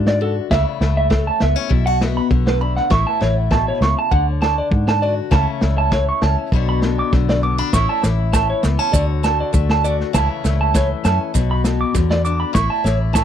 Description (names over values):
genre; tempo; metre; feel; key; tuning
highlife guitar band; 100 BPM; 4/4; straight; A major; A4 = 440 Hz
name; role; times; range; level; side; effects
picked acoustic archtop guitar; accompaniment; 0.0-13.2 s; A2 to F#4; -24 LUFS; left 13 dB; none
vintage muted fingered electric bass; bass; 0.0-13.2 s; A1 to G#2; -19 LUFS; equal; none
electric guitar through a small old amp; arpeggios; 0.1-13.2 s; A4 to D6; -21 LUFS; right 4 dB; tape echo
crunchy breakbeat drum kit; drums; 0.1-13.2 s; kick drum, snare drum; -19 LUFS; equal; none
maracas; percussion; 7.7-13.2 s; none; -31 LUFS; right 14 dB; none
room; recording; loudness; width
little or no reverb; dry, close 1970s-style studio recording; -15 LUFS; side -9 dB against mid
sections
0.0-13.2 A section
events
none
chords
0.0 D; 0.5 A/C#; 1.7 Bm; 2.9 A; 4.1 D; 5.3 A/C#; 6.5 Bm; 7.7 A; 8.9 D; 10.1 A/C#; 11.3 Bm; 12.6 A